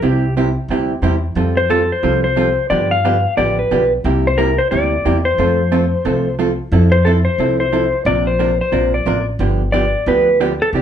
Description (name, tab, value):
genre	country, western swing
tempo	179 BPM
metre	4/4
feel	swing 63% on 8ths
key	F major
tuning	A4 = 440 Hz
part	clean lap steel guitar	melody	0.0-10.8 s	G4 to F5	-16 LUFS	left 2 dB	none
part	vintage hollow-body jazz guitar	accompaniment	0.0-10.8 s	C3 to Bb4	-18 LUFS	right 3 dB	none
part	upright bass	bass	0.0-10.8 s	G1 to G2	-18 LUFS	equal	none
room	wet studio reverb, RT60 0.6 s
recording	band playing live in one room, nothing above 10.6 kHz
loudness	-13 LUFS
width	side -9 dB against mid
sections	0.0-10.8 A section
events	none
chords	0.0 C; 1.4 Fadd9; 2.7 G7; 4.0 C7; 5.4 F; 6.7 Fmaj7; 8.1 Bbadd9; 9.4 G7